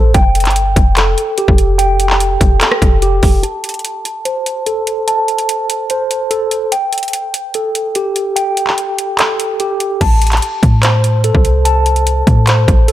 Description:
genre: hip hop, trap.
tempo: 146 BPM.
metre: 4/4.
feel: half-time.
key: A minor.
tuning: A4 = 441 Hz.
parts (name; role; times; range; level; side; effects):
mellow tine electric piano; arpeggios; 0.0-12.9 s; G4 to A5; -16 LUFS; equal; fast stereo tremolo, low-pass filter, digital delay.
clean 808-style bass; bass; 0.0-3.4, 10.0-12.9 s; F1 to A2; -13 LUFS; equal; none.
trap drum kit; drums; 0.1-12.9 s; crash cymbal, handclaps, hi-hat, kick drum, rim click; -14 LUFS; equal; none.
room: little or no reverb.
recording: none.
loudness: -11 LUFS.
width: side -13 dB against mid.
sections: 0.0-3.4 A section; 3.4-10.0 B section; 10.0-12.9 C section.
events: filter sweep on tine electric piano 3.4-10.0; kick muted 9.2-10.0.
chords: 0.1 Fadd9; 3.4 Am; 6.7 Gsus2; 10.0 Am.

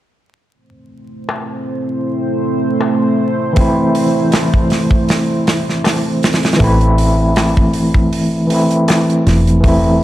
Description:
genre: trip hop.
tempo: 79 BPM.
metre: 4/4.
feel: swing 55% on 16ths.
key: A minor.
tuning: A4 = 440 Hz.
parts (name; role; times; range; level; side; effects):
deep dark ambient pad; sustained chords; 1.2-6.6 s; A3 to C5; -19 LUFS; right 1 dB; chorus, built-in reverb.
darbuka; percussion; 1.3-9.1 s; none; -24 LUFS; left 3 dB; none.
overdriven tine electric piano; accompaniment; 3.5-10.0 s; E3 to E4; -14 LUFS; equal; fast tremolo, harmonic tremolo, tape echo.
modern studio drum kit; drums; 3.6-9.8 s; hi-hat, kick drum, snare drum; -16 LUFS; equal; none.
deep dub fingered electric bass; bass; 6.6-10.0 s; E1 to A1; -15 LUFS; equal; none.
room: studio reverb.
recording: dark, warm production, vinyl crackle.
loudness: -12 LUFS.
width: side -14 dB against mid.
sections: 0.5-6.6 A section; 6.6-10.0 B section.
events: none.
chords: 0.5 Am.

